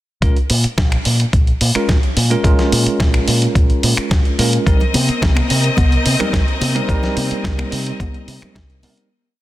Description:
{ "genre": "nu-disco, nu disco", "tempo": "108 BPM", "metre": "4/4", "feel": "straight", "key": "Bb dorian", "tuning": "A4 = 444 Hz", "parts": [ { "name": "bell-like tine electric piano", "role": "accompaniment", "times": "0.2-9.1 s", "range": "G3 to Bb4", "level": "-21 LUFS", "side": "right 1 dB", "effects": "fast stereo tremolo, tape echo" }, { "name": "fingered electric bass with an envelope filter", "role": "bass", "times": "0.2-8.9 s", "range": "Bb1 to C3", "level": "-18 LUFS", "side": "equal", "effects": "tube saturation" }, { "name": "dusty soul sampler-style drum kit", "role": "drums", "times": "0.2-9.1 s", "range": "finger snaps, hi-hat, snare drum", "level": "-21 LUFS", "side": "equal", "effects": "none" }, { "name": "electronic kick drum", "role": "drums", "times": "0.2-8.7 s", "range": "none", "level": "-16 LUFS", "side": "equal", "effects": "none" }, { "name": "clear studio string section", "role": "sustained chords", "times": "4.7-9.1 s", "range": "C4 to Eb5", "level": "-23 LUFS", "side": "left 2 dB", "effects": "sidechain pumping" }, { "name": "congas", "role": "percussion", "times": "4.8-8.9 s", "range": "none", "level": "-25 LUFS", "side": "left 3 dB", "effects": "none" } ], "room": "little or no reverb", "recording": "dense, heavily limited modern master", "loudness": "-13 LUFS", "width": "side -15 dB against mid", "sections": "0.2-9.1 groove", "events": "fade-out 6.2-9.1", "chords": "0.2 Bbm7; 4.7 Cm7" }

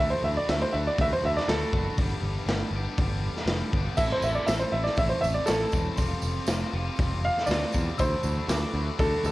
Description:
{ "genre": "indie rock", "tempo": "120 BPM", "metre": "4/4", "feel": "straight", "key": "unclear", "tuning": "A4 = 441 Hz", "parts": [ { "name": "clear upright piano", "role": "melody", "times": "0.0-9.3 s", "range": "A4 to F5", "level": "-28 LUFS", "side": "right 1 dB", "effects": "cassette tape" }, { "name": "electric guitar through a small old amp", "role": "riff", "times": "0.0-9.3 s", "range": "G2 to A4", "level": "-38 LUFS", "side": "right 6 dB", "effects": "analog chorus, analog delay" }, { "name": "raw garage guitar", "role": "riff", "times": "0.0-9.3 s", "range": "G2 to G4", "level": "-36 LUFS", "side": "left 7 dB", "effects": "overdrive" }, { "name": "modern bright picked electric bass", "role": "bass", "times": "0.0-9.3 s", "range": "E1 to E2", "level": "-30 LUFS", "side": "equal", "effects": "none" }, { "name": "raw garage drum kit", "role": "drums", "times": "0.5-9.1 s", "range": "crash cymbal, hi-hat, kick drum, snare drum", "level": "-29 LUFS", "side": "equal", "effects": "cassette tape" }, { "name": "glockenspiel with rubber mallets", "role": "second line", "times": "4.0-9.3 s", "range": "A5 to E6", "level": "-43 LUFS", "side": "left 6 dB", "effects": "none" }, { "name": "tambourine", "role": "percussion", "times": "4.0-9.3 s", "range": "none", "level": "-42 LUFS", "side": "right 8 dB", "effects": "none" } ], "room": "light reverb", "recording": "home recording on cassette", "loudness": "-24 LUFS", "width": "side -18 dB against mid", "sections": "0.0-9.3 A section", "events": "upright piano solo 0.0-9.3", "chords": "0.0 Dadd9; 2.0 G; 4.0 Am; 6.0 Fsus2; 8.0 Dadd9" }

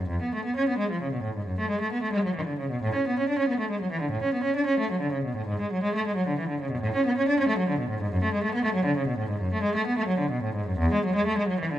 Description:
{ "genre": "classical, baroque-style suite movement for unaccompanied cello", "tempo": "90 BPM (dotted quarters)", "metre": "12/8", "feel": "rubato", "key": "unclear", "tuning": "A4 = 438 Hz", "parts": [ { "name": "rich cello", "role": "solo", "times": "0.0-11.8 s", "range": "E2 to D4", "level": "-24 LUFS", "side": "equal", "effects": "none" } ], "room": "moderate recital hall reverb, RT60 1.5 s", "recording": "close, detailed microphones", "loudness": "-24 LUFS", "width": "side -12 dB against mid", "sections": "0.0-11.8 A section", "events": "none", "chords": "none" }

